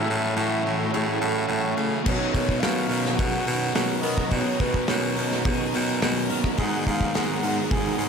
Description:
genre	rock, shoegaze and dream pop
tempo	106 BPM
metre	4/4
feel	straight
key	unclear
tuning	A4 = 440 Hz
part	mellow horn-like synth lead	melody	0.0-8.1 s	B4 to G#5	-32 LUFS	equal	chorus, tape echo
part	warbly tape-like pad	sustained chords	0.0-8.1 s	G#4 to C#6	-35 LUFS	right 4 dB	chorus, built-in reverb
part	picked twelve-string acoustic guitar	arpeggios	0.0-8.1 s	F#4 to A#4	-37 LUFS	left 10 dB	none
part	biting overdriven guitar	riff	0.0-8.1 s	G#2 to E4	-30 LUFS	right 2 dB	spring reverb
part	electric guitar through a small old amp	riff	0.0-8.1 s	G#2 to A#4	-31 LUFS	right 13 dB	reverse reverb
part	thick fuzz guitar	riff	0.0-8.1 s	G#2 to B3	-30 LUFS	left 10 dB	distortion, analog chorus
part	raspy baritone saxophone	bass	0.0-8.1 s	G#2 to B3	-28 LUFS	equal	none
part	loose indie drum kit	drums	2.1-8.1 s	crash cymbal, hi-hat, kick drum, snare drum	-27 LUFS	equal	none
room	light reverb, studio ambience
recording	none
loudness	-22 LUFS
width	side -6 dB against mid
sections	0.0-8.1 A section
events	none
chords	0.0 A6; 2.1 Bmaj9; 6.6 G#m9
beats	0.38 0.94 1.50 | 2.06 2.63 3.19 3.75 | 4.32 4.88 5.45 6.01 | 6.57 7.14 7.70

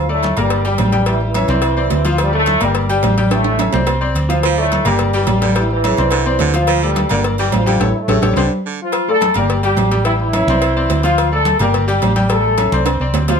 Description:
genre	latin, salsa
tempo	214 BPM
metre	4/4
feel	straight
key	D minor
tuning	A4 = 440 Hz
part	mellow trombone section	melody	0.0-13.4 s	G2 to A4	-18 LUFS	equal	none
part	hollow-body short-scale fingered electric bass	bass	0.0-13.4 s	G1 to D2	-18 LUFS	equal	none
part	bright concert grand piano	accompaniment	0.1-13.4 s	F3 to G5	-20 LUFS	left 3 dB	none
part	congas	percussion	0.1-13.4 s	none	-24 LUFS	equal	none
part	cowbell	percussion	0.2-13.4 s	none	-25 LUFS	left 6 dB	none
part	timbales and agogo bells	percussion	0.2-13.4 s	none	-24 LUFS	right 6 dB	none
part	edgy baritone saxophone	second line	4.4-8.8 s	C#3 to F3	-23 LUFS	right 8 dB	none
room	light reverb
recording	close, detailed microphones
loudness	-13 LUFS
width	side -6 dB against mid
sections	0.0-8.9 A section; 8.9-13.4 A section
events	drum fill 3.3-4.4, 8.1-8.9, 12.9-13.4; band accent 7.8-8.9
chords	0.0 D5; 1.1 A7; 1.6 Csus2; 2.2 Dm; 2.8 Gm; 3.3 A7; 3.9 Csus2; 4.4 Dm; 5.0 Gm; 5.6 A7; 6.1 Csus2; 6.7 Dm; 7.2 Gm; 7.8 A7; 8.4 Csus2; 8.9 Dm; 10.1 A7; 10.6 Csus2; 11.2 Dm; 11.7 Gm; 12.3 A7; 12.9 Csus2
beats	0.23 0.51 0.79 | 1.07 1.35 1.63 1.91 | 2.19 2.47 2.75 3.03 | 3.31 3.59 3.88 4.16 | 4.44 4.72 5.00 5.28 | 5.56 5.84 6.12 6.40 | 6.68 6.96 7.25 7.53 | 7.81 8.09 8.37 8.65 | 8.93 9.21 9.49 9.77 | 10.05 10.34 10.62 10.90 | 11.18 11.46 11.74 12.02 | 12.30 12.58 12.86 13.14

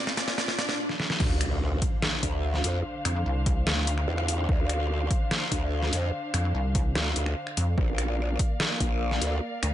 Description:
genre	heavy wobble dubstep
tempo	146 BPM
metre	4/4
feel	half-time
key	D minor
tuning	A4 = 441 Hz
part	wide unison pluck	melody	0.0-0.8 s	F4 to D5	-35 LUFS	right 1 dB	phaser, dub echo
part	warm studio string section	sustained chords	0.0-9.7 s	Bb2 to F5	-35 LUFS	left 1 dB	sidechain pumping, low-pass filter
part	riser and impact	sound effects	0.0-2.8 s	none	-34 LUFS	equal	none
part	dubstep drum kit	drums	0.1-9.7 s	crash cymbal, finger snaps, hi-hat, snare drum	-29 LUFS	equal	none
part	growl bass	bass	1.2-9.4 s	Bb1 to F2	-27 LUFS	equal	chorus, overdrive
part	electronic kick drum	drums	1.2-8.9 s	none	-27 LUFS	equal	none
part	pulsing pluck wobble bass	bass	3.1-9.7 s	C2 to F2	-26 LUFS	equal	chorus, overdrive
room	little or no reverb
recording	nothing above 10.7 kHz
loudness	-24 LUFS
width	side -12 dB against mid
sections	0.0-1.2 A section; 1.2-9.7 B section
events	build-up 0.0-1.2; drum fill 0.0-0.8, 0.9-1.2; riser 0.0-0.8; drop 1.2-9.7; impact 1.2-2.8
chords	0.0 Bb; 1.2 Dm7; 7.8 Bb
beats	0.38 0.79 | 1.20 1.61 2.02 2.44 | 2.85 3.26 3.67 4.08 | 4.49 4.90 5.31 5.72 | 6.13 6.54 6.96 7.37 | 7.78 8.19 8.60 9.01 | 9.42

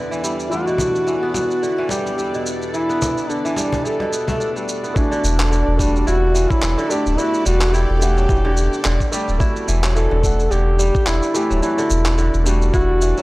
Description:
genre	organic downtempo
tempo	108 BPM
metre	4/4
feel	swing 57% on 16ths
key	E minor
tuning	A4 = 440 Hz
part	felt-muted upright piano	accompaniment	0.0-13.2 s	E3 to F#5	-28 LUFS	equal	sidechain pumping
part	bowed-like drone	sustained chords	0.0-13.2 s	E2 to D5	-30 LUFS	equal	built-in reverb, phaser, sidechain pumping
part	kora	arpeggios	0.0-13.2 s	B2 to E4	-25 LUFS	equal	tape echo
part	wind-like tuned noise texture	texture	0.0-5.0 s	none	barely audible	none	none
part	electronic shaker and handclaps	drums	0.1-13.2 s	none	-27 LUFS	right 1 dB	none
part	mellow duduk	melody	0.2-13.2 s	D4 to A4	-21 LUFS	equal	tape echo
part	cajon	percussion	0.8-4.4 s	none	-26 LUFS	left 2 dB	none
part	electronic kick drum	drums	5.0-12.9 s	none	-19 LUFS	equal	none
part	warm sub bass	bass	5.2-13.1 s	D1 to E1	-18 LUFS	equal	sidechain pumping
room	small room reverb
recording	dry, gritty hardware recording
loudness	-16 LUFS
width	side -20 dB against mid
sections	0.0-5.0 A section; 5.0-13.2 B section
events	none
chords	0.0 Gsus2/E; 5.0 Em7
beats	| 0.52 1.07 1.63 2.18 | 2.74 3.29 3.85 4.41 | 4.96 5.52 6.07 6.63 | 7.18 7.74 8.29 8.85 | 9.40 9.96 10.52 11.07 | 11.63 12.18 12.74

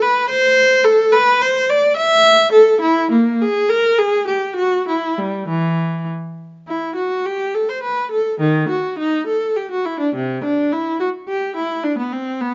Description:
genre	classical, baroque-style suite movement for unaccompanied viola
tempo	98-109 BPM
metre	3/4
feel	rubato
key	E minor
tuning	A4 = 439 Hz
part	clear viola	solo	0.0-12.5 s	C3 to E5	-17 LUFS	equal	none
room	moderate stone room reverb, RT60 1.0 s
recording	dark, warm production, nothing above 7.5 kHz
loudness	-17 LUFS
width	mono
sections	0.0-6.7 A section; 6.7-12.5 A section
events	none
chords	none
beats	0.30 0.86 | 1.42 1.97 2.54 | 3.12 3.70 4.28 | 4.88 5.49 6.09 | 6.68 7.26 7.83 | 8.40 8.98 9.56 | 10.14 10.72 11.28 | 11.84 12.40

